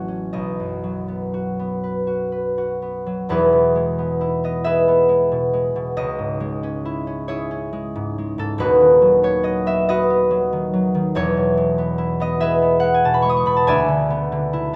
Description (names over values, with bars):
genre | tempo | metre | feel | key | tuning
classical, solo harp piece | 40-48 BPM (dotted quarters) | 6/8 | rubato | E major | A4 = 440 Hz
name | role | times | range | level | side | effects
concert harp | solo | 0.0-14.8 s | D#1 to D#6 | -20 LUFS | equal | none
room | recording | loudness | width
wet recital hall reverb, RT60 1.5 s | none | -20 LUFS | mono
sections
0.0-3.3 A section; 3.3-14.8 B section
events
none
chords
0.4 B; 3.3 E; 6.0 C#m; 8.6 B/D#; 11.2 E; 13.7 E7/D